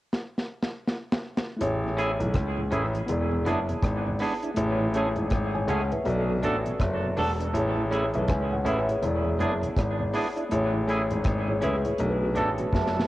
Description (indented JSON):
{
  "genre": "lovers rock reggae",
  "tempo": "81 BPM",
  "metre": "4/4",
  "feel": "swing 61% on 16ths",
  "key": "A major",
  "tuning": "A4 = 440 Hz",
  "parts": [
    { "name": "deep reggae drum kit", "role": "drums", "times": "0.1-13.1 s", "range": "hi-hat, kick drum, rim click, snare drum", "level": "-30 LUFS", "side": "equal", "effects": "cassette tape, analog delay" },
    { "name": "mellow tine electric piano", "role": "accompaniment", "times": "1.6-13.1 s", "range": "A3 to G#5", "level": "-29 LUFS", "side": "left 1 dB", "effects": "cassette tape, analog delay" },
    { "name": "clear grand piano", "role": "bass", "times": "1.6-13.1 s", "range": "E1 to C#2", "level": "-27 LUFS", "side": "equal", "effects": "none" },
    { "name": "mellow tonewheel organ", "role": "accompaniment", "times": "1.8-13.0 s", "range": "E2 to G#4", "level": "-34 LUFS", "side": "right 2 dB", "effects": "slow rotary speaker, cassette tape, analog delay" },
    { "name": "twangy electric guitar", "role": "stabs", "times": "2.0-12.5 s", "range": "A3 to A4", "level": "-32 LUFS", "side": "right 2 dB", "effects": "cassette tape, analog delay" },
    { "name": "vibraphone with soft mallets", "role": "melody", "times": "12.7-13.1 s", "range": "A5", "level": "-30 LUFS", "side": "right 6 dB", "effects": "cassette tape" }
  ],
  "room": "light reverb",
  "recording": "home recording on cassette, lossy compression artefacts",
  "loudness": "-24 LUFS",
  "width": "side -16 dB against mid",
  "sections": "0.0-1.6 A section; 1.6-13.1 B section",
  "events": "drum fill 0.1-1.6, 12.7-13.1",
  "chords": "0.0 N.C.; 1.6 Amaj7; 3.1 E7; 4.6 Amaj7; 6.1 Bm7; 7.5 Amaj7; 9.0 E7; 10.5 Amaj7; 12.0 Bm7"
}